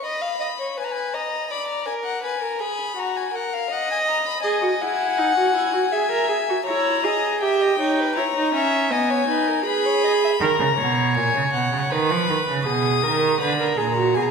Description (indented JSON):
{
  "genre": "classical, baroque-style fugue for string quartet",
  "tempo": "81 BPM",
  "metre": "4/4",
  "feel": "straight",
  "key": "G# minor",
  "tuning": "A4 = 440 Hz",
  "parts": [
    { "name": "warm violin", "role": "melody", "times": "0.0-14.3 s", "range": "E#5 to Eb6", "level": "-25 LUFS", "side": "left 8 dB", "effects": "none" },
    { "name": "warm violin", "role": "second line", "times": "0.0-10.3 s", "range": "F#4 to F#5", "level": "-24 LUFS", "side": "left 2 dB", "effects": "none" },
    { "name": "warm viola", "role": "accompaniment", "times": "4.4-14.3 s", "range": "B3 to C#5", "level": "-22 LUFS", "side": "right 3 dB", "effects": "none" },
    { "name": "warm cello", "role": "bass", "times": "10.4-14.3 s", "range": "A#2 to F3", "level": "-22 LUFS", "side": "right 5 dB", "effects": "none" }
  ],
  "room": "moderate scoring stage reverb, RT60 1.8 s",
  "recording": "minimal, uncompressed stereo recording",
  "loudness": "-19 LUFS",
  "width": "side -5 dB against mid",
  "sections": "0.0-14.3 A section",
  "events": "none",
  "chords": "0.0 Fm7b5 (rootless); 1.5 G#dim; 3.0 D#m/F#; 4.4 G#5; 5.9 A#m7b5; 7.4 Gdim7; 8.9 G#m/B; 10.4 D#m (rootless); 11.9 Fm7b5; 13.4 G#m9b5"
}